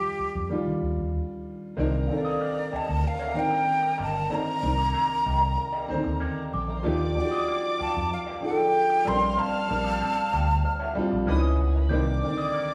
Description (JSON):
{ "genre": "lush 1970s-style soul", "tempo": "95 BPM", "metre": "4/4", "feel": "straight", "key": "C dorian", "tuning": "A4 = 443 Hz", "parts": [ { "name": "breathy hollow jazz flute", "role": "melody", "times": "0.0-12.7 s", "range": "G4 to C6", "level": "-29 LUFS", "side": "equal", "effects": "none" }, { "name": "warm grand piano", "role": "accompaniment", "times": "0.0-12.7 s", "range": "D3 to C5", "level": "-32 LUFS", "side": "equal", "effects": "none" }, { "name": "vintage muted fingered electric bass", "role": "bass", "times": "0.2-12.2 s", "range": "G1 to Eb3", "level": "-31 LUFS", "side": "equal", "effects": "none" }, { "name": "dark studio violin section", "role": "second line", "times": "1.8-12.7 s", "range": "Eb4 to F6", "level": "-39 LUFS", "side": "equal", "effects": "none" }, { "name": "electric guitar through a small old amp", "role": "riff", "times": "1.8-12.7 s", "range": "Bb3 to Eb5", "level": "-39 LUFS", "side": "equal", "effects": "wah" }, { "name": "small celesta", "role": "texture", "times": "2.1-12.7 s", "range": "F5 to G6", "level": "-41 LUFS", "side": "equal", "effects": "none" } ], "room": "wet stone room reverb, RT60 1.4 s", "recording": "band playing live in one room, small room reverb", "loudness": "-26 LUFS", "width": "mono", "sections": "0.0-1.8 A section; 1.8-12.7 B section", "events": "break 1.1-1.8", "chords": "0.0 Ebmaj9; 1.8 Cm9; 6.8 Ebmaj9; 9.1 Bb69; 11.3 Dbm9; 11.9 Cm9" }